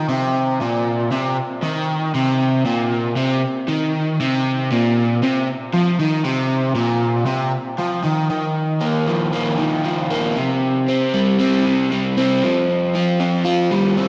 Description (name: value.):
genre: rock.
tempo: 117 BPM.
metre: 4/4.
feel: straight.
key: C minor.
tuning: A4 = 441 Hz.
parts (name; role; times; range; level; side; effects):
overdriven semi-hollow guitar; solo; 0.0-14.1 s; Bb2 to F4; -19 LUFS; equal; phaser, analog delay.
room: wet lush hall reverb, RT60 2.4 s.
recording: dreamy mix soaked in reverb.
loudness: -19 LUFS.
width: mono.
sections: 0.0-8.3 A section; 8.3-14.1 B section.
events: none.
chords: 0.0 Cm; 8.3 Ebsus2; 10.4 C5; 12.4 Fsus2.